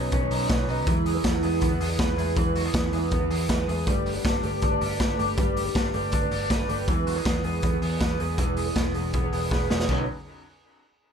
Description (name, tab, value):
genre	jangly indie pop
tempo	160 BPM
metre	4/4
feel	straight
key	unclear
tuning	A4 = 440 Hz
part	fingerpicked twelve-string acoustic guitar	accompaniment	0.0-10.0 s	B2 to B4	-30 LUFS	right 6 dB	none
part	electric guitar through a small old amp	arpeggios	0.0-10.1 s	B2 to B4	-29 LUFS	left 2 dB	lush chorus, tape echo
part	vintage muted picked electric bass	bass	0.0-10.1 s	E1 to E2	-29 LUFS	equal	none
part	raw garage drum kit	drums	0.1-10.0 s	crash cymbal, hi-hat, kick drum, snare drum	-26 LUFS	equal	none
room	moderate small room reverb, RT60 0.5 s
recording	none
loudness	-22 LUFS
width	side -7 dB against mid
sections	0.0-9.9 A section; 9.9-11.1 B section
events	drum fill 9.5-9.9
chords	0.0 Badd9; 0.9 E; 3.9 Gadd9; 6.9 E; 9.9 Badd9